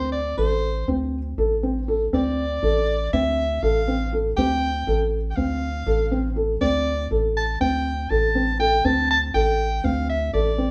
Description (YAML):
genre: contemporary instrumental, chamber music in an uneven meter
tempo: 241 BPM (eighths)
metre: 9/8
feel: straight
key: D minor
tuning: A4 = 440 Hz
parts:
  - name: breathy soprano saxophone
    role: melody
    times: 0.0-10.7 s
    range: C5 to A5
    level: -27 LUFS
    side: equal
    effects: none
  - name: felt-muted upright piano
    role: arpeggios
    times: 0.0-10.7 s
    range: C4 to A4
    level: -26 LUFS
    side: equal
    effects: none
  - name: round analog bass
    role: bass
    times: 0.0-10.7 s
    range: A1 to D2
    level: -28 LUFS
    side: equal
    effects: none
room: wet studio reverb, RT60 0.8 s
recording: heard from further back in the room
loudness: -22 LUFS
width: mono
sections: 0.0-10.7 A section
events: none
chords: 0.0 D7(no3)